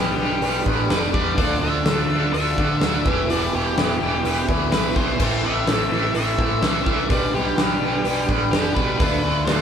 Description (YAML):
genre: classic rock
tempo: 126 BPM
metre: 4/4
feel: straight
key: unclear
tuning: A4 = 444 Hz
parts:
  - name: octave-fuzz lead guitar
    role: melody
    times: 0.0-9.6 s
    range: G4 to E5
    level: -27 LUFS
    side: left 1 dB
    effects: distortion
  - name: fingerpicked twelve-string acoustic guitar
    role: accompaniment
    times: 0.0-9.6 s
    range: A2 to B4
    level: -33 LUFS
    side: left 5 dB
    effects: none
  - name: bright tonewheel organ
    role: sustained chords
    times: 0.0-9.6 s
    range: F3 to B4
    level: -36 LUFS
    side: left 1 dB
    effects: none
  - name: crunchy overdriven guitar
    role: riff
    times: 0.0-9.6 s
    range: D3 to C5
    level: -27 LUFS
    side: left 6 dB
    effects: phaser
  - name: overdriven electric guitar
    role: riff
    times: 0.0-9.6 s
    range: E2 to D4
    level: -24 LUFS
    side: right 5 dB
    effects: harmonic tremolo
  - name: fuzz picked electric bass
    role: bass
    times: 0.0-9.6 s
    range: E1 to D3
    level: -26 LUFS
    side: equal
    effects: overdrive
  - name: big rock drum kit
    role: drums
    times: 0.4-9.6 s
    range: crash cymbal, hi-hat, kick drum, snare drum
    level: -24 LUFS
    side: equal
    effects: none
  - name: cowbell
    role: percussion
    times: 0.4-9.6 s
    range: none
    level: -35 LUFS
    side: right 8 dB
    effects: none
room: moderate studio reverb, RT60 0.6 s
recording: band playing live in one room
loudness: -18 LUFS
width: side -8 dB against mid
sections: 0.0-9.6 A section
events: none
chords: 0.0 G/B; 1.4 Dm; 3.1 Em; 5.2 Amadd9; 7.1 G/B; 9.0 Dm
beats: 0.42 0.90 | 1.38 1.86 2.33 2.81 | 3.29 3.77 4.24 4.72 | 5.19 5.67 6.14 6.62 | 7.09 7.57 8.04 8.52 | 8.99 9.47